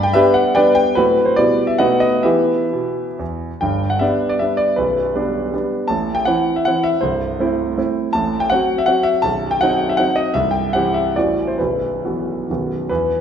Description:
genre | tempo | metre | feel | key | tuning
classical, romantic triple-time dance for piano with dotted rhythms | 121-173 BPM | 3/4 | rubato | E minor, G major from 3.6 s | A4 = 444 Hz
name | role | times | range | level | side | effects
clear concert grand piano | solo | 0.0-13.2 s | B0 to B5 | -15 LUFS | equal | none
room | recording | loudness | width
wet recital hall reverb, RT60 1.7 s | recorded in a church or concert hall | -15 LUFS | side -8 dB against mid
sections
0.0-3.6 A section; 3.6-12.9 B section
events
none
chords
0.0 G; 1.0 F#dim/A; 1.4 Em/B; 1.8 B7; 2.2 Em; 3.6 G; 4.8 G/B; 5.9 Am; 7.0 Am/C; 8.1 F#dim/A; 9.2 B; 10.4 C; 11.2 F#m7b5/A; 11.6 Bsus4; 12.5 B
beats
0.14 0.55 | 0.95 1.36 1.80 | 2.25 2.73 3.21 | 3.63 4.02 4.41 | 4.77 5.15 5.53 | 5.89 6.26 6.66 | 7.03 7.40 7.77 | 8.14 8.51 8.88 | 9.24 9.62 10.00 | 10.35 10.73 11.16 | 11.59 12.04 12.49 | 12.90

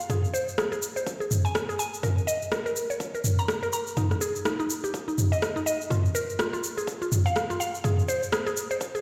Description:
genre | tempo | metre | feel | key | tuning
afro house | 124 BPM | 4/4 | swing 59% on 16ths | unclear | A4 = 440 Hz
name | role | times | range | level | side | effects
deep house drum kit | drums | 0.0-9.0 s | rim click, shaker, toms | -30 LUFS | equal | overdrive
mallet-like synth pluck | arpeggios | 0.1-9.0 s | Eb4 to Bb5 | -32 LUFS | equal | chorus, sidechain pumping, delay
electronic kick drum | drums | 0.1-8.9 s | none | -41 LUFS | equal | overdrive, high-pass filter on kick, high-pass filter on room
room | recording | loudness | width
moderate lush hall reverb, RT60 2.1 s | played on a big sound system in a bare room, stone room reverb | -27 LUFS | mono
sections
0.0-9.0 A section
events
build-up 0.0-9.0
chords
none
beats
| 0.10 0.58 1.07 1.55 | 2.04 2.52 3.00 3.49 | 3.97 4.46 4.94 5.42 | 5.91 6.39 6.88 7.36 | 7.84 8.33 8.81

